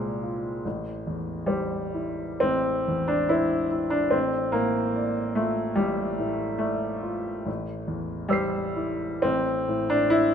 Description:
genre	classical, impressionist solo piano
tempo	71 BPM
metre	4/4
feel	rubato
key	unclear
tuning	A4 = 440 Hz
part	warm grand piano	solo	0.0-10.3 s	A1 to C7	-24 LUFS	equal	none
room	moderate recital hall reverb, RT60 1.6 s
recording	none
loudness	-24 LUFS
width	side -8 dB against mid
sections	0.0-10.3 A section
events	none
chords	0.0 Bbsus2/C; 0.6 Am7; 4.1 Dmadd11/A; 7.5 Am7; 9.3 D5/A

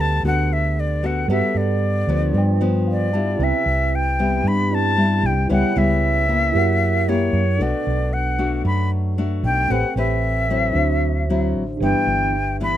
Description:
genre	bossa nova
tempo	114 BPM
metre	4/4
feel	straight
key	G major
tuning	A4 = 444 Hz
part	jazz flute	melody	0.0-12.8 s	C#5 to B5	-22 LUFS	left 2 dB	none
part	mellow tine electric piano	accompaniment	0.0-12.8 s	C4 to A5	-27 LUFS	right 7 dB	slow stereo tremolo
part	nylon-string guitar	accompaniment	0.0-12.8 s	G2 to B4	-23 LUFS	left 3 dB	none
part	hollow-body short-scale fingered electric bass	bass	0.0-12.8 s	G1 to G2	-21 LUFS	right 1 dB	none
room	little or no reverb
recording	close, detailed microphones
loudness	-17 LUFS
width	side -12 dB against mid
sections	0.0-3.4 A section; 3.4-12.8 B section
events	tine electric piano fill 2.6-3.4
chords	0.0 Gmaj9; 2.3 G7; 3.4 Cmaj7; 5.5 C#m7b5; 6.5 F#7b9; 7.6 Bm7; 9.7 Am9; 10.8 D9; 11.8 G6

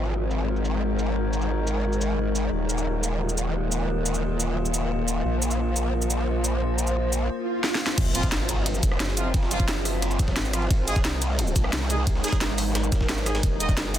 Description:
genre	dark technical drum and bass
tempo	176 BPM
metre	4/4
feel	straight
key	F phrygian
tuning	A4 = 439 Hz
part	metallic inharmonic drone	sustained chords	0.0-14.0 s	Eb3 to C5	-29 LUFS	left 1 dB	chorus, built-in reverb, vintage 12-bit sampler grit, sidechain pumping
part	growl bass	bass	0.0-14.0 s	Eb1 to C2	-26 LUFS	equal	chorus, tube saturation, sidechain pumping
part	drum and bass drum kit	drums	0.1-14.0 s	crash cymbal, hi-hat, rim click, shaker, snare drum	-28 LUFS	equal	overdrive, low-pass filter on perc, low-pass filter on snare, low-pass filter on hats, low-pass filter on cymbals, low-pass filter on room
part	swell and impact	sound effects	7.4-9.3 s	none	-32 LUFS	right 2 dB	none
part	breakbeat sampler-style drum kit	drums	8.0-14.0 s	ride cymbal, snare drum	-37 LUFS	right 1 dB	none
part	electronic kick drum	drums	8.0-13.8 s	none	-24 LUFS	equal	overdrive
part	clear brass ensemble	stabs	8.1-13.7 s	F3 to Eb5	-31 LUFS	right 1 dB	digital delay
room	light reverb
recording	dense, heavily limited modern master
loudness	-22 LUFS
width	side -11 dB against mid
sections	0.0-8.0 A section; 8.0-14.0 B section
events	filter sweep on synth drone 0.0-8.0; swell 7.4-8.0; drum fill 7.6-8.0; drop 8.0-14.0; impact 8.0-9.3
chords	0.0 Ab5; 2.5 Ebsus2; 5.3 Bb5; 8.0 Fm; 10.7 Ab; 13.4 Ebmadd9

